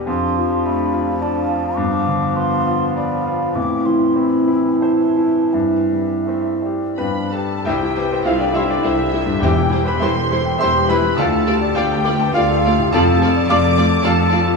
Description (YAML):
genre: classical, romantic movement for piano and orchestra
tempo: 80-110 BPM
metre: 3/4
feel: rubato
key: C major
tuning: A4 = 440 Hz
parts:
  - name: bright grand piano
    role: melody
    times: 0.0-14.6 s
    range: C2 to D6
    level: -19 LUFS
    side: left 2 dB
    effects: none
  - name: warm clarinet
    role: second line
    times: 0.0-14.6 s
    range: B3 to D5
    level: -27 LUFS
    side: left 2 dB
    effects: none
  - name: warm bassoon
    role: accompaniment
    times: 0.0-7.7 s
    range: E3 to A3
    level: -26 LUFS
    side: right 4 dB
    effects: none
  - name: mellow French horn section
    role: sustained chords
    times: 0.0-14.6 s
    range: B3 to C5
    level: -22 LUFS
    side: left 1 dB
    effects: none
  - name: mellow hollow concert flute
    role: second line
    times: 0.1-14.6 s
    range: D5 to D6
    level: -26 LUFS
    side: equal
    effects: none
  - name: rich symphonic violin section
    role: second line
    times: 7.0-14.6 s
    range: D5 to D6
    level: -26 LUFS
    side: equal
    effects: none
  - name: rich studio violin section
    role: melody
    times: 7.7-14.4 s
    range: C5 to D5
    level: -29 LUFS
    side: left 2 dB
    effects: none
  - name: warm studio viola section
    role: accompaniment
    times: 7.7-14.4 s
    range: G3 to F4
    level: -25 LUFS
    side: right 2 dB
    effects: none
  - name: rich symphonic cello section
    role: bass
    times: 7.7-14.5 s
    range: C2 to F2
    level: -23 LUFS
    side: right 2 dB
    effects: none
  - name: warm symphonic double bass section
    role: bass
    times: 7.7-14.5 s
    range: E1 to D2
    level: -25 LUFS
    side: right 4 dB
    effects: none
  - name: timpani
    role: percussion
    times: 9.4-10.3 s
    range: E2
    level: -24 LUFS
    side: left 1 dB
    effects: none
room: wet scoring stage reverb, RT60 1.9 s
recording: none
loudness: -15 LUFS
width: side -3 dB against mid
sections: 0.0-7.7 A section; 7.7-14.6 B section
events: none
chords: 0.1 Dm/F; 1.8 G7; 3.6 Am; 5.5 C/G; 7.0 G; 7.7 C; 9.4 C/E; 11.2 Dm; 12.9 Dm/F